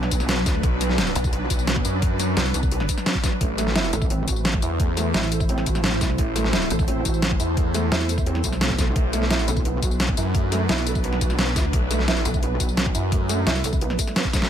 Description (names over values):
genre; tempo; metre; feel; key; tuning
dark technical drum and bass; 173 BPM; 4/4; straight; unclear; A4 = 440 Hz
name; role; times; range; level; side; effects
swarming drone; sustained chords; 0.0-14.5 s; F#3 to C5; -29 LUFS; right 1 dB; built-in reverb, sidechain pumping
pulsing pluck wobble bass; bass; 0.0-14.0 s; A1 to E2; -25 LUFS; equal; chorus
dubstep drum kit; drums; 0.0-14.5 s; hi-hat, snare drum, tambourine; -25 LUFS; equal; overdrive
electronic kick drum; drums; 0.1-14.4 s; none; -24 LUFS; equal; overdrive
phased detuned saw bass; bass; 0.6-13.5 s; A1 to F#2; -24 LUFS; equal; phaser, overdrive, sidechain pumping
felt-muted upright piano; arpeggios; 3.4-14.5 s; A3 to A4; -30 LUFS; right 3 dB; sidechain pumping, tape echo
room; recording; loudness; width
digital ambience; none; -20 LUFS; side -9 dB against mid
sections
0.0-14.5 A section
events
drop 0.0-14.5; drum fill 14.3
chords
0.0 Bm; 3.4 Am; 9.0 Bm